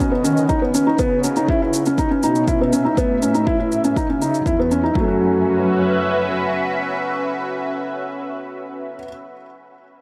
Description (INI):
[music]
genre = piano and strings electronica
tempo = 121 BPM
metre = 4/4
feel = straight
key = F# dorian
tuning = A4 = 442 Hz
[part]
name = lush unison pad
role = sustained chords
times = 0.0-9.2 s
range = C#4 to E5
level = -26 LUFS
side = equal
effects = chorus, phaser, sidechain pumping
[part]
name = felt-muted upright piano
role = riff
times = 0.0-9.1 s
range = F#3 to F#4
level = -22 LUFS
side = equal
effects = delay
[part]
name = muted chamber cello section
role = bass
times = 0.0-6.4 s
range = E2 to D#3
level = -27 LUFS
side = equal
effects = sidechain pumping
[part]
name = electronic kick drum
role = drums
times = 0.0-5.1 s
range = none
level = -25 LUFS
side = equal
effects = overdrive
[part]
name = shaker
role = drums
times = 0.0-4.8 s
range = none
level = -32 LUFS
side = equal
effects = overdrive
[sound]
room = light reverb, small room reverb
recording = none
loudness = -19 LUFS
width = mono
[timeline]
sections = 0.0-5.0 A section; 5.0-8.9 B section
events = none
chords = 0.0 B; 1.0 C#m; 3.0 A; 5.0 F#m7